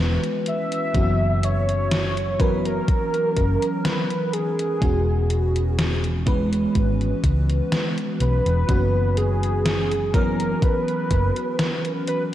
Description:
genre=vaporwave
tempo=62 BPM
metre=4/4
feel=straight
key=unclear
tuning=A4 = 441 Hz
part: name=FM electric piano with soft pad layer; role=accompaniment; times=0.0-12.3 s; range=E3 to B4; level=-25 LUFS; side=equal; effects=lush chorus, analog delay
part: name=hollow-body short-scale fingered electric bass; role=bass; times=0.0-11.3 s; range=E1 to C#2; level=-22 LUFS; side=equal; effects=tube saturation
part: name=gated 80s digital drum machine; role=drums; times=0.2-12.3 s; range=hi-hat, snare drum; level=-27 LUFS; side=equal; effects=gated reverb, gated reverb snare, overdrive
part: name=warm velvety synth lead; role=melody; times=0.5-12.2 s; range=G#4 to E5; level=-25 LUFS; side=equal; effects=chorus, tape echo
part: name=electronic kick drum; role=drums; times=0.9-11.3 s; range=none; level=-21 LUFS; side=equal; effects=overdrive
room=wet lush hall reverb, RT60 2.6 s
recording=dreamy mix soaked in reverb, cassette tape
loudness=-19 LUFS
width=side -12 dB against mid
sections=0.0-12.3 A section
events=none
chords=0.0 E69; 0.9 F#7sus4; 4.8 E69; 8.7 F#7sus4

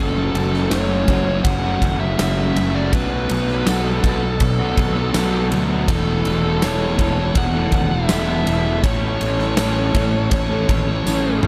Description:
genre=rock, shoegaze and dream pop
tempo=81 BPM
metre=4/4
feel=straight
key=F# minor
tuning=A4 = 440 Hz
part: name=fuzz lead guitar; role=melody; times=0.0-11.4 s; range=A4 to F#5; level=-27 LUFS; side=equal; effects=distortion, delay
part: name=twelve-string electric guitar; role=arpeggios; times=0.0-11.5 s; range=E3 to A4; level=-33 LUFS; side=equal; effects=none
part: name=raw garage guitar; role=riff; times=0.0-11.5 s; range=E2 to A4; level=-27 LUFS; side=equal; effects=overdrive, reverse reverb
part: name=thick fuzz guitar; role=riff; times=0.0-11.5 s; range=E2 to B3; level=-27 LUFS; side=equal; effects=distortion, analog chorus
part: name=fuzz fingered electric bass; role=bass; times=0.0-11.5 s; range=E1 to D2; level=-24 LUFS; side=equal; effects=overdrive
part: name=huge arena drum kit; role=drums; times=0.4-11.5 s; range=kick drum, ride cymbal, snare drum, toms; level=-24 LUFS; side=equal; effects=none
part: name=tambourine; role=percussion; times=0.7-11.2 s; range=none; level=-38 LUFS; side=equal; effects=none
room=moderate lush hall reverb, RT60 2.1 s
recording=dreamy mix soaked in reverb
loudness=-19 LUFS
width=mono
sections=0.0-11.5 A section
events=drum fill 11.1-11.5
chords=0.0 F#m; 2.9 Bm7; 5.9 Esus4; 8.8 A

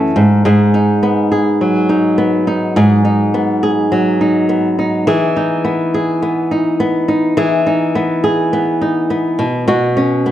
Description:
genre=pop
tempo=104 BPM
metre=4/4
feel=swing 60% on 16ths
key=E major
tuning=A4 = 440 Hz
part: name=flamenco guitar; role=solo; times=0.0-10.3 s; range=F#2 to G#4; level=-12 LUFS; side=equal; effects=none
room=moderate recital hall reverb, RT60 1.5 s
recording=worn, warbling old tape, cassette tape, warbly pitch drift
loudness=-12 LUFS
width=side -12 dB against mid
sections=0.0-10.3 A section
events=none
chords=0.2 G#m7; 5.1 Emaj7; 9.4 Bsus2

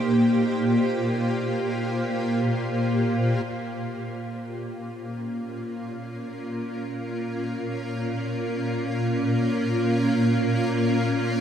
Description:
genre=ambient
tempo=free time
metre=none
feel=none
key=Bb dorian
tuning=A4 = 440 Hz
part: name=granular cloud pad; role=sustained chords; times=0.0-11.4 s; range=Bb2 to C5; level=-23 LUFS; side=equal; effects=built-in reverb, shimmer reverb
part: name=felt-muted upright piano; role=arpeggios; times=0.0-3.5 s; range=none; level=barely audible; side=none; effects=none
part: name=organ-like drone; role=drone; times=3.6-11.4 s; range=Bb3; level=-35 LUFS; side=right 2 dB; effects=ensemble chorus, built-in reverb
room=wet huge ambient reverb, RT60 7.4 s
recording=dreamy mix soaked in reverb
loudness=-23 LUFS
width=side -8 dB against mid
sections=0.0-3.5 A section; 3.5-11.4 B section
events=fade-in on ambient pad 3.5-11.4; fade-in on synth drone 3.5-11.4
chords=0.0 Cm7/Bb; 3.5 Bbm

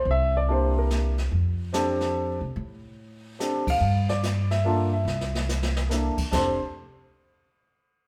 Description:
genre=jazz piano trio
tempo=144 BPM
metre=3/4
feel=swing 65% on 8ths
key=F major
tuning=A4 = 442 Hz
part: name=warm grand piano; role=melody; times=0.0-6.6 s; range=Bb3 to F5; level=-29 LUFS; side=equal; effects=none
part: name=upright bass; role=bass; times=0.0-6.6 s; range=F1 to C3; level=-28 LUFS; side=equal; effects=none
part: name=jazz brush drum kit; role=drums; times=0.1-6.4 s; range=brushed snare drum, crash cymbal, hi-hat, kick drum, ride cymbal, snare drum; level=-34 LUFS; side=equal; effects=none
room=wet stone room reverb, RT60 1.1 s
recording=band playing live in one room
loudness=-25 LUFS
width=mono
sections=0.0-3.8 A section; 3.8-6.3 B section; 6.3-7.6 C section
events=band accent 3.6; drum fill 5.1-5.9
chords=0.1 C7; 1.3 F6; 3.8 G7(no3); 5.1 C; 6.3 F5

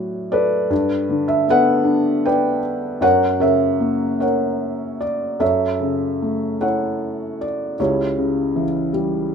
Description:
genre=classical, lyrical solo piano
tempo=51 BPM (dotted quarters)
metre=6/8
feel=rubato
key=unclear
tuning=A4 = 440 Hz
part: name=felt-muted upright piano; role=solo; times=0.0-9.3 s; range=C#2 to G5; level=-17 LUFS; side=equal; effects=none
room=moderate studio reverb, RT60 0.5 s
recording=none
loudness=-17 LUFS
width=side -6 dB against mid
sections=0.0-9.3 A section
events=none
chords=0.0 D/A; 0.7 Gadd9; 3.0 F#; 5.4 F#m7; 7.8 C#dim

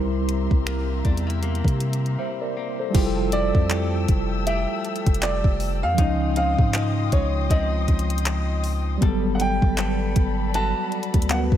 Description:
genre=contemporary R&B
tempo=79 BPM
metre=4/4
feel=swing 58% on 16ths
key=unclear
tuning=A4 = 442 Hz
part: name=mellow tine electric piano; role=accompaniment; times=0.0-11.6 s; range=F3 to E5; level=-27 LUFS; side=right 1 dB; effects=medium stereo tremolo
part: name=muted studio string section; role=sustained chords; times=0.0-11.6 s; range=G4 to E6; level=-34 LUFS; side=left 5 dB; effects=none
part: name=direct-recorded clean electric guitar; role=arpeggios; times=0.0-11.6 s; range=C3 to A4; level=-32 LUFS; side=left 8 dB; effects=lush chorus, ping-pong delay
part: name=long sustained 808-style bass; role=bass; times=0.0-11.6 s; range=F1 to C3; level=-25 LUFS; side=equal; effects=none
part: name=smooth R&B drum kit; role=drums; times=0.3-11.6 s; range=crash cymbal, finger snaps, handclaps, hi-hat, kick drum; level=-22 LUFS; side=equal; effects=none
part: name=warm grand piano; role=melody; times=3.3-11.4 s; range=Db5 to A5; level=-27 LUFS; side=right 2 dB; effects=none
room=little or no reverb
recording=none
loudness=-20 LUFS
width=side -11 dB against mid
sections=0.0-2.9 A section; 2.9-11.6 B section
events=break 2.2-2.9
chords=0.0 C7; 2.9 Fmaj9; 6.0 Dbmaj9; 9.0 Gmaj9

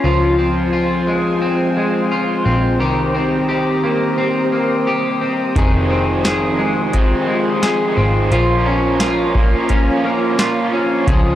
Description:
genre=dream pop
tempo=87 BPM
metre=4/4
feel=straight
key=unclear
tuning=A4 = 440 Hz
part: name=string machine, cellos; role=sustained chords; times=0.0-11.4 s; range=F4 to Eb6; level=-22 LUFS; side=right 1 dB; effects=ensemble chorus
part: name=electric guitar at the edge of break-up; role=arpeggios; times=0.0-11.4 s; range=Eb3 to Ab4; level=-17 LUFS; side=left 1 dB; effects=lush chorus, tape echo
part: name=vintage muted picked electric bass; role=bass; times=0.0-11.4 s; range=F1 to Db2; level=-20 LUFS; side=equal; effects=none
part: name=raw garage guitar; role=accompaniment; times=5.6-11.4 s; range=F2 to Db4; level=-22 LUFS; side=right 4 dB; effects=overdrive, tremolo, analog chorus
part: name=booming analog drum machine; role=drums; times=5.6-11.3 s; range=hi-hat, kick drum, snare drum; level=-16 LUFS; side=equal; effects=overdrive
room=light reverb, digital ambience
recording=dry, gritty hardware recording, cassette tape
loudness=-14 LUFS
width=side -12 dB against mid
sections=0.0-11.4 A section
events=none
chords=0.0 Dbmaj7; 2.8 Cm7; 5.6 Fm7; 8.3 Bbm

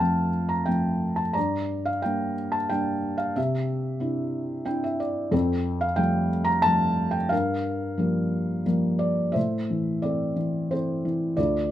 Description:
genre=classical, lyrical solo piano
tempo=90 BPM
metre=3/4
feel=rubato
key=unclear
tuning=A4 = 441 Hz
part: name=felt-muted upright piano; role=solo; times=0.0-11.7 s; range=D2 to Bb5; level=-23 LUFS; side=equal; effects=none
room=light reverb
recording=none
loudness=-23 LUFS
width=side -12 dB against mid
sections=0.0-9.4 A section; 9.4-11.7 B section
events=felt piano fill 4.3-5.3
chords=0.0 F; 1.4 Gm; 3.4 Cadd9; 5.3 Fadd9; 7.3 Gm7; 9.4 Am

